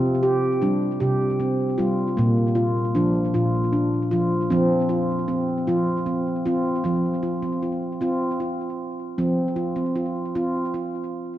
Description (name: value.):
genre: world meditative.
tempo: 51 BPM (dotted quarters).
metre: 6/8.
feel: straight.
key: unclear.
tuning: A4 = 438 Hz.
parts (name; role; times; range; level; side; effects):
handpan; solo; 0.0-11.1 s; Bb2 to G4; -21 LUFS; equal; ping-pong delay.
room: wet recital hall reverb, RT60 1.4 s, small room ambience.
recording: dark, warm production.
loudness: -21 LUFS.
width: side -13 dB against mid.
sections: 0.0-6.8 A section; 6.8-11.4 B section.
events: none.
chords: 0.0 C5; 2.2 Bb; 4.5 F5.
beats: 1.00 | 2.17 3.33 | 4.50 5.67 | 6.84 8.01 | 9.18 10.35.